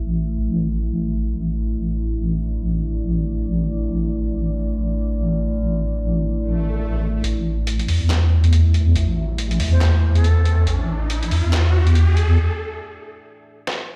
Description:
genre	deep dubstep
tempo	140 BPM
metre	4/4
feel	swing 58% on 16ths, half-time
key	unclear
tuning	A4 = 439 Hz
part	deep dark ambient pad	sustained chords	0.0-12.4 s	A3 to E5	-31 LUFS	equal	chorus, built-in reverb, vintage 12-bit sampler grit
part	deep soft wobble bass	bass	0.0-12.4 s	A1 to E2	-20 LUFS	equal	chorus
part	swell and riser	sound effects	6.5-12.4 s	none	-33 LUFS	equal	none
part	trip hop sampler-style drum kit	drums	7.2-13.8 s	handclaps, hi-hat, snare drum	-30 LUFS	equal	high-pass filter on cymbals, low-pass filter on cymbals, small room ambience, high-pass filter on hats, low-pass filter on hats, high-pass filter on snare, low-pass filter on snare
part	bright reedy shakuhachi	melody	9.7-10.7 s	A4 to C5	-33 LUFS	equal	low-pass filter, dub echo
room	digital ambience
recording	played on a big sound system in a bare room, stone room reverb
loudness	-20 LUFS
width	mono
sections	0.0-7.2 A section; 7.2-14.0 B section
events	filter sweep on ambient pad 0.0-7.2, 7.2-14.0; swell 6.5-7.2; build-up 7.2-14.0; riser 7.2-12.4; break 12.4-14.0; drum fill 13.7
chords	0.0 A5

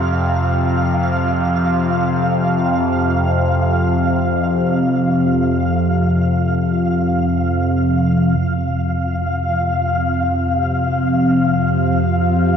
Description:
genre	dark ambient drone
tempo	free time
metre	none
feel	none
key	unclear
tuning	A4 = 440 Hz
part	analog drone	drone	0.0-12.6 s	F2 to C3	-16 LUFS	equal	chorus, phaser
part	flickering grainy texture	texture	0.0-12.6 s	F5	-22 LUFS	equal	built-in reverb, shimmer reverb
part	granular cloud pad	sustained chords	9.3-12.6 s	F3 to F4	-28 LUFS	equal	built-in reverb
room	wet cathedral reverb, RT60 6.8 s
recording	in a vast, echoing space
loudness	-15 LUFS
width	side -7 dB against mid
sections	0.0-8.4 A section; 8.4-12.6 B section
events	filter sweep on synth drone 8.4-12.6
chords	0.0 F5

